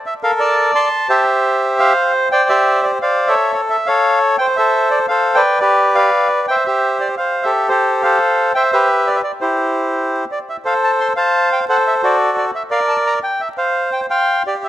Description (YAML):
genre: tango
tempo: 173 BPM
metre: 3/4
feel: rubato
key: C major, F major from 10.6 s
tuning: A4 = 440 Hz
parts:
  - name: bandoneon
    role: solo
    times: 0.1-14.7 s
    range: E4 to C6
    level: -13 LUFS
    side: equal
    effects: none
room: moderate concert hall reverb, RT60 2.3 s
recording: close, detailed microphones, vinyl crackle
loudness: -13 LUFS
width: side -13 dB against mid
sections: 0.0-2.3 A section; 2.3-10.6 B section; 10.6-14.7 A section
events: none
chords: 0.2 Gmadd9; 1.3 C; 2.3 Csus2; 3.4 A; 4.4 Amadd11; 5.4 G; 6.5 C; 7.5 Fadd9; 8.6 C; 8.9 G; 9.6 C; 10.6 F; 11.7 D7; 12.7 Bbadd9; 13.8 Csus4